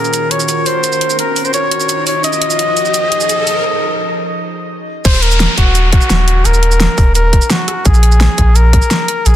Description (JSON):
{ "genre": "liquid drum and bass", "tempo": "171 BPM", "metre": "4/4", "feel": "straight", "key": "Eb dorian", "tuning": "A4 = 440 Hz", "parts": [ { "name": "warm flugelhorn", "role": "melody", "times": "0.0-9.4 s", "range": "Gb4 to Eb5", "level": "-16 LUFS", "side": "left 1 dB", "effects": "ping-pong delay" }, { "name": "glassy FM pad", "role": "sustained chords", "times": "0.0-3.6 s", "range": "Eb3 to C5", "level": "-21 LUFS", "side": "equal", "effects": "ensemble chorus, built-in reverb" }, { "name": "pop drum kit", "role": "drums", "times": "0.0-9.3 s", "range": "crash cymbal, hi-hat, rim click, shaker, snare drum", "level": "-17 LUFS", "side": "right 1 dB", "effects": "overdrive" }, { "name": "riser and downlifter", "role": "sound effects", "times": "1.1-7.9 s", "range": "none", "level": "-21 LUFS", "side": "right 1 dB", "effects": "none" }, { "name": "warm sub bass", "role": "bass", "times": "5.0-9.4 s", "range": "Eb1 to Bb1", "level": "-10 LUFS", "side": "equal", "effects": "none" }, { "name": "electronic kick drum", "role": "drums", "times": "5.0-8.8 s", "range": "none", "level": "-11 LUFS", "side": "equal", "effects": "none" } ], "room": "light reverb, digital ambience", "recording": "dense, heavily limited modern master", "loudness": "-10 LUFS", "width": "side -12 dB against mid", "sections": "0.0-5.0 A section; 5.0-9.4 B section", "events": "build-up 0.0-5.0; filter sweep on flugelhorn 0.0-5.0; riser 1.1-3.6; break 3.6-5.0; drop 5.0-9.4", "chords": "0.0 Ebm9; 2.2 Fm7; 5.0 Ebm; 7.9 Bb5" }